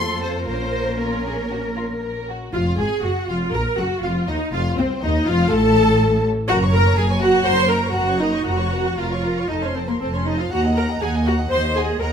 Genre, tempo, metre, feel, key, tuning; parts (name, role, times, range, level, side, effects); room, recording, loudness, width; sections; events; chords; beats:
quick classical-period movement for string orchestra; 120 BPM; 4/4; rubato; Bb minor; A4 = 442 Hz
rich studio violin section; melody; 0.0-12.1 s; Bb4 to C6; -28 LUFS; equal
warm symphonic violin section; second line; 0.0-12.1 s; C4 to Db6; -28 LUFS; equal
bright symphonic viola section; accompaniment; 0.0-12.1 s; A3 to C5; -21 LUFS; equal
dark symphonic cello section; bass; 0.0-12.1 s; C2 to Bb4; -25 LUFS; left 1 dB
rich symphonic double bass section; bass; 0.0-12.1 s; F1 to F2; -24 LUFS; equal
moderate stone room reverb, RT60 1.2 s; -17 LUFS; side -7 dB against mid
0.0-2.5 A section; 2.5-12.1 B section
0.5 Bbm; 2.5 Bb5/F; 4.5 F7; 6.5 Gb; 8.5 Bbm/F; 9.5 F; 10.5 Ebm; 11.5 Cdim/Eb
| 0.49 1.00 1.51 2.02 | 2.53 3.03 3.53 4.03 | 4.53 5.03 5.52 6.01 | 6.49 6.98 7.46 7.96 | 8.46 8.98 9.50 10.01 | 10.52 11.02 11.51 12.01